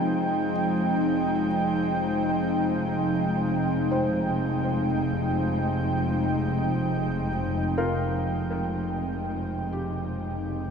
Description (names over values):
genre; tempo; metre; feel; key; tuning
ambient; free time; none; none; F minor; A4 = 442 Hz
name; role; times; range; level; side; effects
airy breathy pad; sustained chords; 0.0-10.7 s; F3 to G5; -25 LUFS; equal; chorus, shimmer reverb
felt-muted upright piano; arpeggios; 0.0-10.7 s; F4 to C5; -35 LUFS; equal; analog delay, shimmer reverb
rich studio double bass section; bass; 0.0-10.7 s; F1; -31 LUFS; equal; none
room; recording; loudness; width
wet plate reverb, RT60 2.4 s; echo-heavy mix; -24 LUFS; side -6 dB against mid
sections
0.0-10.7 A section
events
fade-out on felt piano 0.0-10.7; fade-out 6.2-10.7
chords
0.0 Fm7